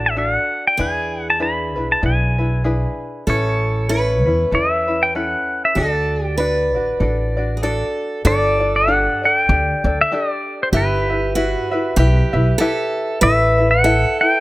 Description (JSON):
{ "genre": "Hawaiian", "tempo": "96 BPM", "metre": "4/4", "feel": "swing 58% on 8ths", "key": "D major, G major from 8.3 s", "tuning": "A4 = 440 Hz", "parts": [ { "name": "pedal steel guitar", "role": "melody", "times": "0.0-14.4 s", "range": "B4 to B5", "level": "-19 LUFS", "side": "equal", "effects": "none" }, { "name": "picked steel-string acoustic guitar", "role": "second line", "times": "0.0-14.4 s", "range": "F#4 to B4", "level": "-23 LUFS", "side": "right 2 dB", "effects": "none" }, { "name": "tenor ukulele", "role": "accompaniment", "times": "0.0-14.4 s", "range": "C#4 to E5", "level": "-23 LUFS", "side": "left 2 dB", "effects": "none" }, { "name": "upright bass", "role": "bass", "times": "0.0-14.0 s", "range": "G1 to E2", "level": "-20 LUFS", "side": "equal", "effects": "none" } ], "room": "light reverb", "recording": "none", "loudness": "-15 LUFS", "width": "side -18 dB against mid", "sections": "0.0-8.3 A section; 8.3-14.4 B section", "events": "none", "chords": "0.0 D; 0.8 E7; 3.3 Aadd9; 5.8 D; 8.3 Gsus2; 10.7 Em/G; 13.2 Asus2" }